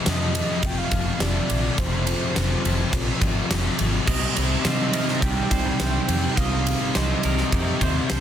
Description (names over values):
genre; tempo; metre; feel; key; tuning
rock, shoegaze and dream pop; 105 BPM; 4/4; straight; C minor; A4 = 439 Hz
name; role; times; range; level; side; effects
fuzz guitar; riff; 0.0-8.2 s; F2 to C4; -26 LUFS; left 6 dB; distortion, ensemble chorus
breathy flute-like synth lead; melody; 0.1-8.1 s; C5 to G5; -32 LUFS; right 2 dB; chorus, tremolo, tape echo
vintage muted fingered electric bass; bass; 0.1-8.2 s; F1 to C3; -26 LUFS; equal; none
huge arena drum kit; drums; 0.1-8.2 s; crash cymbal, kick drum, ride cymbal, snare drum; -24 LUFS; right 1 dB; soft clipping on kick
twangy electric guitar; arpeggios; 4.1-8.2 s; G4 to Eb5; -33 LUFS; right 8 dB; analog chorus, tape echo
overdriven electric guitar; riff; 4.1-8.2 s; C3 to G4; -30 LUFS; right 11 dB; reverse reverb
room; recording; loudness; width
little or no reverb; dense, heavily limited modern master; -20 LUFS; side -10 dB against mid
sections
0.0-8.2 A section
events
none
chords
0.0 F5; 4.1 Cm7